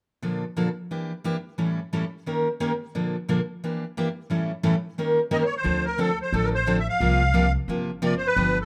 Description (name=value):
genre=acoustic string swing (jazz manouche)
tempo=177 BPM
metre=4/4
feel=swing 60% on 8ths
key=D minor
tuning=A4 = 445 Hz
part: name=picked steel-string acoustic guitar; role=accompaniment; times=0.2-8.6 s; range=A2 to Bb4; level=-27 LUFS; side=equal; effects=plate reverb
part: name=musette accordion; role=melody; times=5.3-8.7 s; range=A4 to F5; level=-26 LUFS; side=equal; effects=plate reverb
part: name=upright bass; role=bass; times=5.7-8.7 s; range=G1 to D2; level=-29 LUFS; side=equal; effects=none
room=wet small room reverb, RT60 0.5 s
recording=rough home demo mix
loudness=-25 LUFS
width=mono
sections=0.2-5.7 A section; 5.7-8.7 B section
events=none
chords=0.2 Bbmaj7; 0.9 Em7b5; 1.6 A7; 2.3 Eb7; 2.9 Bbmaj7; 3.6 Em7b5; 4.3 A7; 5.0 Eb7; 5.7 Dm7; 7.0 C7sus4